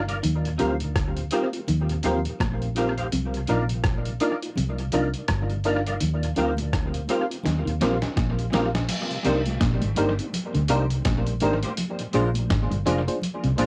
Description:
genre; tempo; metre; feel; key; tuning
lovers rock reggae; 83 BPM; 4/4; swing 59% on 16ths; C minor; A4 = 440 Hz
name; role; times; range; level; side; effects
FM electric piano; accompaniment; 0.0-13.7 s; C4 to C5; -30 LUFS; equal; chorus, cassette tape, analog delay
vintage muted fingered electric bass; bass; 0.0-13.7 s; F1 to Eb2; -29 LUFS; equal; none
mellow tonewheel organ; accompaniment; 0.1-13.7 s; Eb2 to F4; -38 LUFS; equal; none
electric guitar through a small old amp; stabs; 0.1-13.7 s; Ab3 to F5; -34 LUFS; equal; ensemble chorus, cassette tape, analog delay
dusty soul sampler-style drum kit; drums; 0.1-13.7 s; crash cymbal, hi-hat, kick drum, rim click, snare drum; -31 LUFS; equal; cassette tape, analog delay
clean electric guitar; riff; 0.2-13.7 s; F2 to Eb3; -34 LUFS; equal; none
congas; percussion; 0.2-13.4 s; none; -38 LUFS; equal; none
room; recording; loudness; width
light reverb; home recording on cassette; -25 LUFS; mono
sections
0.0-8.9 A section; 8.9-13.7 B section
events
drum fill 7.5-8.9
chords
0.2 Eb69; 3.1 Cm11; 6.0 Eb69; 8.9 Cm7; 11.8 Bb7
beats
| 0.24 0.96 1.68 2.40 | 3.12 3.84 4.57 5.29 | 6.01 6.73 7.45 8.17 | 8.90 9.62 10.34 11.06 | 11.78 12.50 13.22

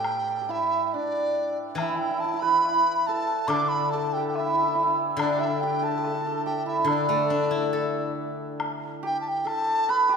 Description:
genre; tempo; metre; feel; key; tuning
chinese traditional, Chinese chamber ensemble; 70 BPM; 2/4; rubato; D zhi mode; A4 = 441 Hz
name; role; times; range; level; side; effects
mellow hollow large dizi; melody; 0.0-10.2 s; D5 to D6; -26 LUFS; equal; none
hammered dulcimer; second line; 0.0-10.2 s; D4 to D5; -26 LUFS; right 3 dB; none
steel-string zither; accompaniment; 0.0-9.5 s; A2 to A4; -31 LUFS; left 6 dB; none
woodblock; percussion; 0.0-9.7 s; none; -36 LUFS; left 2 dB; none
room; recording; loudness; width
wet concert hall reverb, RT60 2.4 s; minimal, uncompressed stereo recording; -23 LUFS; side -6 dB against mid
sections
0.0-8.6 A section; 8.6-10.2 B section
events
none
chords
none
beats
| 0.05 0.91 | 1.78 2.65 | 3.50 4.35 | 5.19 6.03 | 6.88 7.74 | 8.61 9.47

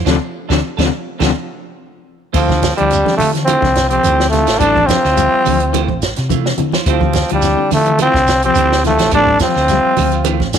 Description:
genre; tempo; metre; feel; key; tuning
afrobeat; 106 BPM; 4/4; straight; D minor; A4 = 440 Hz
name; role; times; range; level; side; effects
electric guitar at the edge of break-up; arpeggios; 0.0-10.6 s; C3 to G3; -23 LUFS; left 13 dB; tremolo
semi-hollow electric guitar; stabs; 0.0-10.4 s; A3 to C5; -25 LUFS; right 13 dB; none
hollow-body short-scale fingered electric bass; bass; 0.0-10.6 s; A1 to D3; -19 LUFS; equal; none
reed electric piano; accompaniment; 0.1-10.4 s; F3 to E5; -25 LUFS; left 16 dB; overdrive, fast tremolo
compact cocktail drum kit; drums; 0.1-10.6 s; crash cymbal, hi-hat, kick drum, snare drum; -21 LUFS; right 1 dB; none
congas; percussion; 0.1-10.5 s; none; -22 LUFS; right 11 dB; none
shekere; percussion; 0.1-10.6 s; none; -26 LUFS; right 6 dB; none
growling trombone; melody; 2.3-10.5 s; F3 to D4; -14 LUFS; left 1 dB; none
edgy alto saxophone; second line; 2.3-10.5 s; C4 to A4; -24 LUFS; right 12 dB; none
room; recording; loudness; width
light reverb, small room ambience; 1960s-style stereo with parts hard left and right; -12 LUFS; side -8 dB against mid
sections
0.0-2.3 A section; 2.3-10.6 B section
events
band accent 0.1-2.3; drum fill 1.8-2.3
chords
0.0 Dm7; 2.3 Dm9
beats
| 0.07 0.64 1.20 1.77 | 2.34 2.90 3.47 4.04 | 4.60 5.17 5.73 6.30 | 6.86 7.43 7.99 8.56 | 9.12 9.69 10.25

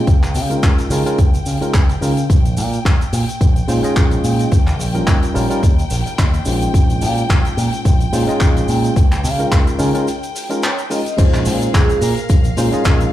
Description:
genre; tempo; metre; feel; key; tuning
nu-disco, nu disco; 108 BPM; 4/4; swing 55% on 16ths; Bb dorian; A4 = 441 Hz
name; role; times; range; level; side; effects
tine electric piano; accompaniment; 0.0-13.1 s; G3 to Eb5; -21 LUFS; equal; overdrive, sidechain pumping, ping-pong delay
clear studio string section; sustained chords; 0.0-13.1 s; F5 to G5; -28 LUFS; left 2 dB; sidechain pumping
picked electric bass with an envelope filter; bass; 0.1-13.1 s; Bb1 to Db3; -19 LUFS; right 1 dB; sidechain pumping
electronic kick drum; drums; 0.1-13.0 s; none; -14 LUFS; equal; studio reverb
tight funk drum kit; drums; 0.1-13.1 s; crash cymbal, handclaps, hi-hat, shaker; -24 LUFS; left 1 dB; studio reverb
cabasa; percussion; 0.1-13.1 s; none; -37 LUFS; right 3 dB; none
vibraphone with medium hard mallets; melody; 10.6-13.1 s; Ab4 to Eb5; -23 LUFS; right 2 dB; ping-pong delay
room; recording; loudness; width
studio reverb; played on a big sound system in a bare room, large studio reverb; -13 LUFS; side -13 dB against mid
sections
0.0-11.2 A section; 11.2-13.1 B section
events
break 10.1-11.2; drop 11.2-13.1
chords
0.1 Db69; 2.3 Bbm11; 9.0 Db69; 11.2 Bbm11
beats
| 0.07 0.63 1.19 1.74 | 2.30 2.85 3.41 3.96 | 4.52 5.07 5.63 6.18 | 6.74 7.30 7.85 8.41 | 8.96 9.52 10.07 10.63 | 11.19 11.74 12.30 12.85

